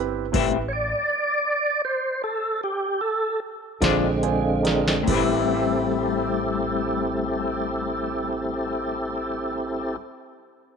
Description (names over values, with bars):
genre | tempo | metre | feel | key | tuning
slow blues | 47-54 BPM (dotted quarters) | 12/8 | straight | A minor | A4 = 441 Hz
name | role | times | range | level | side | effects
warm grand piano | accompaniment | 0.0-10.0 s | C4 to Ab5 | -28 LUFS | right 13 dB | none
upright bass | bass | 0.0-9.9 s | G1 to Bb1 | -32 LUFS | equal | none
electric guitar through a small old amp | accompaniment | 0.3-10.1 s | A2 to F4 | -27 LUFS | left 14 dB | harmonic tremolo
booming analog drum machine | drums | 0.3-5.3 s | crash cymbal, hi-hat, kick drum, snare drum | -27 LUFS | equal | none
tonewheel organ | sustained chords | 0.7-10.0 s | D3 to D5 | -24 LUFS | right 1 dB | overdrive, chorus vibrato, slow rotary speaker
room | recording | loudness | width
moderate echo chamber reverb, RT60 2.4 s | 1960s-style stereo with parts hard left and right | -22 LUFS | side -6 dB against mid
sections
0.0-5.1 A section; 5.1-10.2 B section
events
slowing down 0.0-5.1; tonewheel organ solo 0.0-5.1; grand piano fill 3.8-5.1; drum fill 4.6-5.1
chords
0.0 Am7; 3.8 Bb7; 5.1 Am7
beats
| 0.34 1.46 2.62 3.82 | 5.07 6.36 7.64 8.93